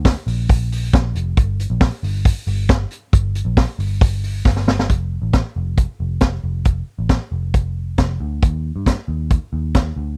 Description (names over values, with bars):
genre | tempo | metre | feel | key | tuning
jangly indie pop | 136 BPM | 4/4 | straight | F mixolydian | A4 = 441 Hz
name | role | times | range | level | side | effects
vintage muted picked electric bass | bass | 0.0-10.2 s | F1 to G2 | -23 LUFS | equal | none
vintage drum kit | drums | 0.1-9.9 s | hi-hat, kick drum, snare drum | -18 LUFS | equal | none
room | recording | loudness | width
little or no reverb | dry, close 1970s-style studio recording | -19 LUFS | mono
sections
0.0-4.9 A section; 4.9-10.2 B section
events
drum fill 4.5-4.9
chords
none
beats
0.05 0.49 0.93 | 1.37 1.81 2.25 2.69 | 3.13 3.57 4.01 4.45 | 4.89 5.33 5.77 6.22 | 6.66 7.10 7.54 7.98 | 8.43 8.87 9.31 9.75